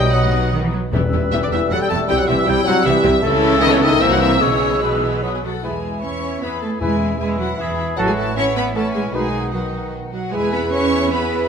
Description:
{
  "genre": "quick classical-period movement for symphony orchestra",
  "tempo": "152 BPM",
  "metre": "3/4",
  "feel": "rubato",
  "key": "E major from 3.2 s",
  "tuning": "A4 = 440 Hz",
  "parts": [
    { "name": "clear studio violin section", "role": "melody", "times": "0.0-11.5 s", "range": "D#4 to A5", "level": "-26 LUFS", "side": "left 5 dB", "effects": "none" },
    { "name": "bright large flute ensemble", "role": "second line", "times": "0.0-11.5 s", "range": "F#5 to E6", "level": "-26 LUFS", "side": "left 3 dB", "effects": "none" },
    { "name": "mellow clarinet", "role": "second line", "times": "0.0-11.5 s", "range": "E4 to E5", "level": "-25 LUFS", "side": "left 1 dB", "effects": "none" },
    { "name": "warm chamber violin section", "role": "second line", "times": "0.0-11.5 s", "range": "D#4 to C#6", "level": "-28 LUFS", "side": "left 5 dB", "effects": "none" },
    { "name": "warm oboe", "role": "second line", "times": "0.0-11.5 s", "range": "C#4 to A5", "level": "-28 LUFS", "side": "right 1 dB", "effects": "none" },
    { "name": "mellow bassoon", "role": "accompaniment", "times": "0.0-11.5 s", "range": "D#3 to Bb3", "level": "-27 LUFS", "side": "right 1 dB", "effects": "none" },
    { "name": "rich studio viola section", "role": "accompaniment", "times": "0.0-11.5 s", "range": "E3 to C#5", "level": "-26 LUFS", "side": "right 1 dB", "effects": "none" },
    { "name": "mellow French horn section", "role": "sustained chords", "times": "0.0-11.5 s", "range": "B2 to G#4", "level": "-23 LUFS", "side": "left 3 dB", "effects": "none" },
    { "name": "rich chamber cello section", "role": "bass", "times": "0.0-11.5 s", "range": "E2 to C#4", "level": "-23 LUFS", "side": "right 3 dB", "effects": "none" },
    { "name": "rich studio double bass section", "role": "bass", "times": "0.0-11.5 s", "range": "E1 to E2", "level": "-25 LUFS", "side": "right 2 dB", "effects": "none" },
    { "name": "timpani", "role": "percussion", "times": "0.9-1.5, 6.8-7.4 s", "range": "E2", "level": "-25 LUFS", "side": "left 2 dB", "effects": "none" },
    { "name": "mellow trumpet", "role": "stabs", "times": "5.6-11.5 s", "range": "A4 to B4", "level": "-28 LUFS", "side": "right 2 dB", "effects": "none" }
  ],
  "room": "moderate concert hall reverb, RT60 1.9 s",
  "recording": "none",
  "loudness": "-16 LUFS",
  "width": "side -6 dB against mid",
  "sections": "0.0-5.6 A section; 5.6-11.5 B section",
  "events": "none",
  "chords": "0.0 B; 0.9 Em; 2.1 C; 3.2 A/C#; 4.0 C7; 4.4 E/B; 5.2 B; 5.6 E; 8.0 F#m7/A; 9.1 B; 10.3 E"
}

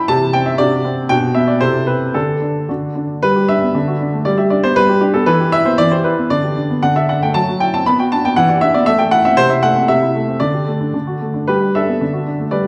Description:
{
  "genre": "classical-period piano sonatina",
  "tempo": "117 BPM",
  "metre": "2/4",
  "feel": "straight",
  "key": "G major",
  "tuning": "A4 = 439 Hz",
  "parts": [
    { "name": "warm baby grand piano", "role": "solo", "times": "0.0-12.7 s", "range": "B2 to B5", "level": "-15 LUFS", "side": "equal", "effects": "none" }
  ],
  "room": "wet recital hall reverb, RT60 1.4 s",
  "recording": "dark, warm production",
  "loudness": "-15 LUFS",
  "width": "mono",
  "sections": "0.0-3.2 A section; 3.2-11.5 B section; 11.5-12.7 B section",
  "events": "none",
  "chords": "0.1 C; 0.6 D7/C; 1.1 G/B; 1.6 Am/C; 2.1 Dsus4; 2.7 D; 3.2 G; 3.8 D; 4.3 G; 5.3 Em; 6.3 G/D; 6.8 D5; 7.4 F#m7b5; 7.9 Bm; 8.4 Em7; 8.9 Am; 9.4 Am/C; 10.4 Dsus4; 10.9 D; 11.5 G; 12.0 D"
}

